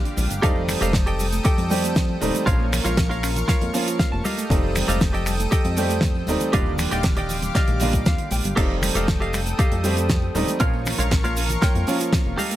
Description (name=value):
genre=nu-disco, nu disco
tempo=118 BPM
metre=4/4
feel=straight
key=F mixolydian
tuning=A4 = 439 Hz
part: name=clear baby grand piano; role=accompaniment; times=0.0-12.4 s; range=D3 to G4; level=-27 LUFS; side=right 2 dB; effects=sidechain pumping, tape echo
part: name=lush unison pad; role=sustained chords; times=0.0-12.6 s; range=G4 to Eb6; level=-31 LUFS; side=left 1 dB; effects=chorus, sidechain pumping
part: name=chorused synth bass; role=bass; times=0.0-12.4 s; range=Eb1 to F2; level=-25 LUFS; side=equal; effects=none
part: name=tambourine and congas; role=percussion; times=0.0-12.6 s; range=none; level=-34 LUFS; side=left 2 dB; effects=none
part: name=soft round pluck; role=arpeggios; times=0.1-12.6 s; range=D3 to F4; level=-32 LUFS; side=equal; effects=chorus, sidechain pumping, tape echo
part: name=damped 70s drum kit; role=drums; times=0.1-12.6 s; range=crash cymbal, finger snaps, hi-hat, shaker, snare drum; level=-26 LUFS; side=right 2 dB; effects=none
part: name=direct-recorded clean electric guitar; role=riff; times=0.2-12.6 s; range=F4 to A5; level=-27 LUFS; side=right 1 dB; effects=lush chorus, tape echo
part: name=electronic kick drum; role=drums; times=0.4-12.2 s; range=none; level=-21 LUFS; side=equal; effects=overdrive
room=small room ambience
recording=none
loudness=-19 LUFS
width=side -14 dB against mid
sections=0.0-12.6 A section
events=clean electric guitar fill 3.7-4.5, 7.6-8.6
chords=0.4 F9; 2.5 Bbm; 4.2 F9; 6.5 Ebmaj9; 8.6 F9; 10.6 Bbm